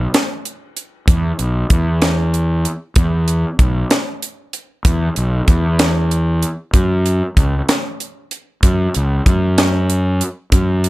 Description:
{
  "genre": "math rock and midwest emo",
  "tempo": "64 BPM (dotted quarters)",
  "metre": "6/8",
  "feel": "straight",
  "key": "unclear",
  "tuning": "A4 = 439 Hz",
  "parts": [
    { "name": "fuzz fingered electric bass", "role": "bass", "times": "0.0-10.9 s", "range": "B1 to F#2", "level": "-16 LUFS", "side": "equal", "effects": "overdrive" },
    { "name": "crisp fusion drum kit", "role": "drums", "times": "0.1-10.9 s", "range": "hi-hat, kick drum, snare drum", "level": "-16 LUFS", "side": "equal", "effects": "none" }
  ],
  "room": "little or no reverb",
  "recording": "none",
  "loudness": "-14 LUFS",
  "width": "side -18 dB against mid",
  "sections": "0.0-10.9 A section",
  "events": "none",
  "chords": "none"
}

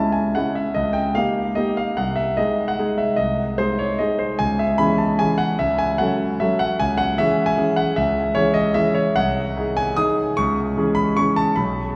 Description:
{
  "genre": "classical, piano waltz",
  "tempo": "149 BPM",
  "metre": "3/4",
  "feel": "rubato",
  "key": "C# minor",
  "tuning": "A4 = 442 Hz",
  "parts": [
    { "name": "clear concert grand piano", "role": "solo", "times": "0.0-12.0 s", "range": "B1 to D#6", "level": "-20 LUFS", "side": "equal", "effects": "none" }
  ],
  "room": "wet cathedral reverb, RT60 5.8 s",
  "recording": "recorded in a church or concert hall",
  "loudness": "-20 LUFS",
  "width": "mono",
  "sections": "0.0-12.0 A section",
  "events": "none",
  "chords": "0.0 C#m; 0.7 D#7/C#; 2.0 G#/B#; 4.4 C#m; 5.6 F#m/C#; 6.8 C#m; 9.2 G#7/B#; 10.4 C#m"
}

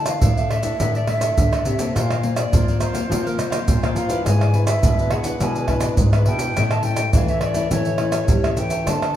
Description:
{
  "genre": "samba and choro",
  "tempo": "104 BPM",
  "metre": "4/4",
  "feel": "straight",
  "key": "unclear",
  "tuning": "A4 = 440 Hz",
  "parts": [
    { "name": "breathy mellow jazz flute", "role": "melody", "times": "0.0-9.2 s", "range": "Bb4 to A5", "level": "-26 LUFS", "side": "equal", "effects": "none" },
    { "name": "nylon-string guitar", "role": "accompaniment", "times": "0.0-9.2 s", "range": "A2 to B4", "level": "-27 LUFS", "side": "left 4 dB", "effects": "none" },
    { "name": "nylon-string guitar", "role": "bass", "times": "0.0-9.2 s", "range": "G#2 to G3", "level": "-23 LUFS", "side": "left 1 dB", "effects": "none" },
    { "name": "maracas, pandeiro, tamborim and surdo", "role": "percussion", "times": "0.1-9.2 s", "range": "none", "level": "-20 LUFS", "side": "right 1 dB", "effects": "none" },
    { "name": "cavaquinho", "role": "accompaniment", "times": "0.2-9.1 s", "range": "D4 to F5", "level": "-32 LUFS", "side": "right 3 dB", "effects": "none" }
  ],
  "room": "wet large studio reverb, RT60 1.5 s",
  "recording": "band playing live in one room",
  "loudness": "-17 LUFS",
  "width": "side -11 dB against mid",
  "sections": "0.0-9.2 A section",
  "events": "none",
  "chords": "0.0 Dsus2; 2.0 Bbsus2; 4.3 E7/G#; 6.6 A"
}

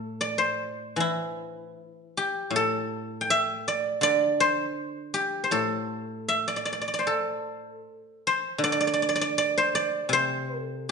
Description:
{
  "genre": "chinese traditional, Chinese solo plucked strings",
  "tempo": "79 BPM",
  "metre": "2/4",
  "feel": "rubato",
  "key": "A yu mode",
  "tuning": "A4 = 445 Hz",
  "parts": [
    { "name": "guzheng", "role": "solo", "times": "0.0-10.9 s", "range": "A2 to G5", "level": "-24 LUFS", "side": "equal", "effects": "none" }
  ],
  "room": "moderate recital hall reverb, RT60 1.3 s",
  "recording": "recorded in a church or concert hall, nothing above 10.7 kHz",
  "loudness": "-24 LUFS",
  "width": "side -5 dB against mid",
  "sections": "1.0-10.9 A section",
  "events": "none",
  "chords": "none"
}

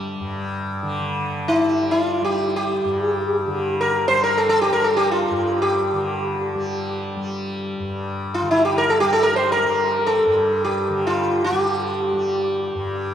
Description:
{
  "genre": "indian classical, Hindustani",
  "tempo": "free time",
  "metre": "none",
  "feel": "none",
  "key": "G raga bhimpalasi",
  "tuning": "A4 = 438 Hz",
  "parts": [
    { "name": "tanpura", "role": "drone", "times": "0.0-13.1 s", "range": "G2 to G3", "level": "-26 LUFS", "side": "equal", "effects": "none" },
    { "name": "sitar", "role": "melody", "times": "1.5-12.7 s", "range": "E4 to C5", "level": "-19 LUFS", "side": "equal", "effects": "none" }
  ],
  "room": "wet cathedral reverb, RT60 5.1 s",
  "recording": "in a vast, echoing space",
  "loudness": "-18 LUFS",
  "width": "side -9 dB against mid",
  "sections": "1.0-13.1 A section",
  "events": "none",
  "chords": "none"
}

